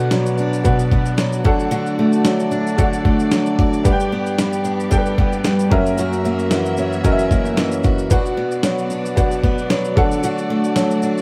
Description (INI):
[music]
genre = acoustic pop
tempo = 113 BPM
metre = 4/4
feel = swing 55% on 16ths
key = unclear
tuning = A4 = 440 Hz
[part]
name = bright upright piano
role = accompaniment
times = 0.0-11.2 s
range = C#4 to G5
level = -25 LUFS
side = equal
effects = none
[part]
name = picked steel-string acoustic guitar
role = accompaniment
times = 0.0-11.2 s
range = F#2 to G4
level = -21 LUFS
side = equal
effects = none
[part]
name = clear studio string section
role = sustained chords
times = 0.0-11.2 s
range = A3 to E5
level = -31 LUFS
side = equal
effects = none
[part]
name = dusty soul sampler-style drum kit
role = drums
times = 0.1-11.2 s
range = kick drum, shaker, snare drum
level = -22 LUFS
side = equal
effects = overdrive
[sound]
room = moderate plate reverb, RT60 2.2 s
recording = heard from further back in the room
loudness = -18 LUFS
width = mono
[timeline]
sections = 0.0-11.2 A section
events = none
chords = 0.0 Bm; 1.5 D; 3.9 G; 5.7 F#7; 8.1 Bm; 10.0 D